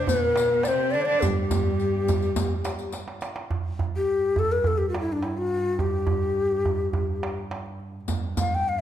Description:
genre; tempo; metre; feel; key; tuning
Arabic maqam ensemble; 105 BPM; 4/4; straight; G maqam rast; A4 = 438 Hz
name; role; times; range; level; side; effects
breathy mellow ney; melody; 0.0-8.8 s; D4 to G5; -24 LUFS; left 3 dB; none
warm cello; second line; 0.0-3.0 s; G3 to D4; -30 LUFS; right 6 dB; none
warm studio cello section; second line; 0.0-2.9 s; G2 to D3; -31 LUFS; left 1 dB; none
darbuka; percussion; 0.1-8.5 s; none; -28 LUFS; right 3 dB; none
riq; percussion; 0.1-3.3, 8.1-8.5 s; none; -34 LUFS; left 5 dB; none
dark double bass; drone; 3.5-8.8 s; G2; -34 LUFS; right 2 dB; none
room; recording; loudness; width
wet recital hall reverb, RT60 1.7 s; minimal, uncompressed stereo recording; -22 LUFS; side -10 dB against mid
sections
0.0-3.5 A section; 3.5-8.8 B section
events
drum fill 2.9-3.5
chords
none

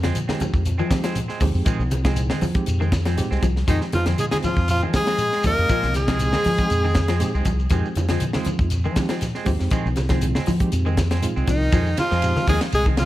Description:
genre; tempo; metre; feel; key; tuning
afrobeat; 119 BPM; 4/4; swing 53% on 16ths; F minor; A4 = 438 Hz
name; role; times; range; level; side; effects
electric guitar at the edge of break-up; arpeggios; 0.0-13.1 s; Eb3 to F3; -30 LUFS; left 6 dB; analog chorus, tape echo
semi-hollow electric guitar; stabs; 0.0-13.0 s; Eb3 to C4; -32 LUFS; right 5 dB; wide subtle chorus
fingered electric bass; bass; 0.0-13.0 s; C2 to F3; -22 LUFS; equal; none
tight funk drum kit; drums; 0.0-13.1 s; hi-hat, kick drum, ride cymbal, snare drum; -24 LUFS; equal; none
congas; percussion; 0.0-13.1 s; none; -29 LUFS; right 1 dB; none
shekere; percussion; 0.0-13.1 s; none; -31 LUFS; left 1 dB; none
reed electric piano; accompaniment; 0.3-12.7 s; Ab3 to G5; -31 LUFS; right 5 dB; fast tremolo
edgy tenor saxophone; melody; 3.7-7.4, 11.5-13.1 s; Eb4 to Bb4; -23 LUFS; equal; tape echo
bright alto saxophone; second line; 3.7-7.4, 11.5-13.1 s; Eb3 to Eb5; -33 LUFS; right 4 dB; none
bright bass trombone; second line; 3.7-7.4, 11.5-13.1 s; Eb3 to Bb3; -32 LUFS; left 3 dB; none
room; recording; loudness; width
studio reverb; none; -18 LUFS; side -15 dB against mid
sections
0.0-11.7 A section; 11.7-13.1 B section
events
none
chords
0.0 Fm7

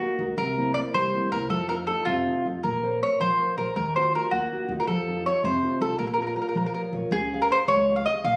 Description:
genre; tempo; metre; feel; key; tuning
italian folk, Italian serenade; 107 BPM (dotted quarters); 6/8; rubato; Bb harmonic minor; A4 = 441 Hz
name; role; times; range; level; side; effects
mandolin; melody; 0.0-8.4 s; F4 to F5; -27 LUFS; equal; plate reverb
nylon-string guitar; accompaniment; 0.0-8.4 s; C3 to F5; -31 LUFS; equal; none
upright bass; bass; 0.2-8.4 s; Bb1 to F2; -37 LUFS; equal; none
room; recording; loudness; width
moderate studio reverb, RT60 0.5 s; recorded on a phone in the room, studio reverb; -25 LUFS; mono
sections
0.0-7.1 A section; 7.1-8.4 B section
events
none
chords
0.4 C7; 1.5 F7; 2.6 Bbmadd9; 3.8 Ebmadd9; 4.9 F7; 6.0 Bbm; 7.1 Db

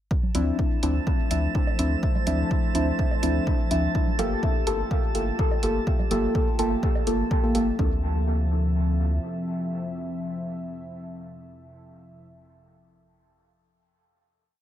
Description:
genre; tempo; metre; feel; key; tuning
dub techno; 125 BPM; 4/4; straight; D minor; A4 = 440 Hz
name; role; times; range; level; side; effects
dark analog pad; sustained chords; 0.1-12.2 s; F3 to E5; -33 LUFS; left 2 dB; chorus, sidechain pumping
electronic kick drum; drums; 0.1-7.9 s; none; -25 LUFS; equal; none
drifting glass-harmonics texture; texture; 0.5-7.8 s; A3 to A5; -35 LUFS; right 3 dB; chorus, built-in reverb, sidechain pumping
congas and woodblock; percussion; 0.2-7.0 s; none; -37 LUFS; right 4 dB; sidechain pumping on perc, dub echo
deep mellow chord stab; stabs; 0.3-12.2 s; F3 to A4; -27 LUFS; equal; chorus, phaser, sidechain pumping, dub echo
soft dub sub bass; bass; 0.3-9.2 s; G1 to D2; -26 LUFS; equal; sidechain pumping
electronic hi-hat; drums; 0.3-7.6 s; none; -34 LUFS; right 2 dB; none
room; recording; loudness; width
light reverb; none; -22 LUFS; side -11 dB against mid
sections
0.1-7.8 groove; 7.8-11.6 final chord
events
none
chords
0.1 Dm9; 3.9 Gm9; 7.8 Dm9

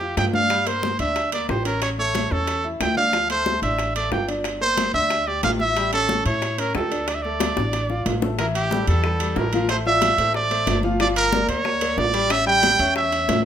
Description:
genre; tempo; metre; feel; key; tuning
latin, salsa; 183 BPM; 4/4; straight; D minor; A4 = 441 Hz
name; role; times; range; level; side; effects
clear trumpet; melody; 0.0-13.4 s; G4 to G5; -21 LUFS; right 2 dB; none
clear grand piano; accompaniment; 0.0-13.4 s; E3 to G5; -27 LUFS; left 2 dB; none
upright bass; bass; 0.0-13.4 s; G1 to A2; -28 LUFS; equal; none
bongos; percussion; 0.0-13.4 s; none; -30 LUFS; left 6 dB; none
congas; percussion; 0.0-13.4 s; none; -30 LUFS; left 4 dB; none
timbales; percussion; 0.2-13.4 s; none; -30 LUFS; right 6 dB; none
room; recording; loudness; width
moderate large studio reverb, RT60 1.0 s; minimal, uncompressed stereo recording; -19 LUFS; side -9 dB against mid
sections
0.0-8.4 A section; 8.4-13.4 B section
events
drum fill 7.4-8.4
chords
0.0 Bb (rootless); 0.5 Gm; 1.8 A; 3.1 Dm; 4.4 Gm; 5.8 A7; 7.1 Dm; 8.4 A5; 9.7 Dm7/A; 11.0 Gm9; 12.3 A7

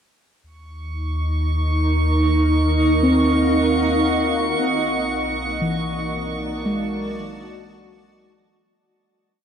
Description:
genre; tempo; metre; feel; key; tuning
ambient; 58 BPM; 4/4; straight; unclear; A4 = 440 Hz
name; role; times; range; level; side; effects
granular cloud pad; sustained chords; 1.3-8.8 s; Eb4 to A5; -22 LUFS; equal; built-in reverb, shimmer reverb
warm sub bass; bass; 0.4-8.7 s; B1 to Eb2; -23 LUFS; equal; none
drifting glass-harmonics texture; texture; 0.8-8.8 s; Db6; -27 LUFS; right 4 dB; chorus, built-in reverb, shimmer reverb
muted felt-like synth keys; arpeggios; 3.0-9.4 s; Fb3 to C4; -23 LUFS; equal; chorus, tape echo
analog drone; drone; 5.5-8.9 s; Bb3 to Eb4; -34 LUFS; left 1 dB; chorus
room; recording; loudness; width
moderate huge ambient reverb, RT60 9.0 s; none; -18 LUFS; side -8 dB against mid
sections
0.4-8.8 A section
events
fade-out on sub bass 0.4-8.8; filter sweep on ambient pad 0.4-8.8; fade-out 4.6-8.8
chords
0.4 Ebm7; 4.6 Bm7

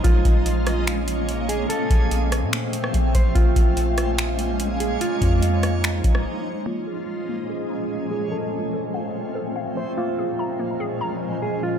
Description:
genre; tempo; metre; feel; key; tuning
hip hop, atmospheric cloud-rap; 145 BPM; 4/4; half-time; Bb minor; A4 = 440 Hz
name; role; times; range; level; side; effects
mellow electric guitar; melody; 0.0-11.8 s; F4 to C5; -28 LUFS; right 3 dB; low-pass filter, digital delay
granular cloud pad; sustained chords; 0.0-11.8 s; Bb2 to Eb4; -26 LUFS; equal; built-in reverb, sidechain pumping, low-pass filter
soft 808-style bass; bass; 0.0-6.2 s; Bb1 to Bb2; -22 LUFS; equal; none
booming analog drum machine; drums; 0.0-6.2 s; finger snaps, hi-hat, kick drum, rim click; -22 LUFS; equal; none
backwards swelling texture; texture; 0.0-11.8 s; Bb2 to Eb5; -34 LUFS; right 1 dB; built-in reverb
hollow square pluck; arpeggios; 6.7-11.6 s; Bb3 to Bb5; -33 LUFS; left 4 dB; chorus, low-pass filter, digital delay
room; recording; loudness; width
digital ambience; none; -20 LUFS; side -8 dB against mid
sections
0.0-6.7 A section; 6.7-11.8 B section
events
break 6.3-6.7; filter sweep 6.7-11.8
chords
0.0 Bbm7; 1.7 F/Bb; 3.4 Bbm7; 5.0 Fm7; 6.7 Bbm7; 8.3 F/Bb; 10.0 Bbm7

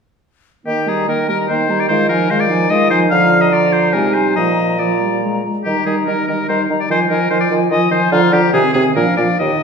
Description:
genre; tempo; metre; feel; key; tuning
quick classical-period movement for wind quintet; 145 BPM; 3/4; rubato; Eb major; A4 = 440 Hz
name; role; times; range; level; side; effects
silver concert flute; melody; 0.7-9.6 s; F5 to Bb5; -22 LUFS; left 6 dB; none
bright oboe; second line; 0.7-9.6 s; F4 to F5; -18 LUFS; left 3 dB; none
mellow French horn; accompaniment; 0.7-9.6 s; Eb3 to Bb3; -20 LUFS; equal; none
mellow clarinet; accompaniment; 0.7-9.6 s; C4 to G4; -22 LUFS; right 4 dB; none
mellow bassoon; bass; 0.7-9.5 s; Eb2 to Eb3; -18 LUFS; right 3 dB; none
room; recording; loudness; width
wet recital hall reverb, RT60 1.4 s; heard from further back in the room; -13 LUFS; side -5 dB against mid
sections
0.7-9.6 A section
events
none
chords
0.7 Eb; 1.9 Fm7/Eb; 3.1 Bb/D; 3.9 Ab/C; 4.4 Bb; 5.7 Eb; 6.9 Fm7/Eb; 8.1 Bb/D; 8.5 Ab/C; 9.0 Bb

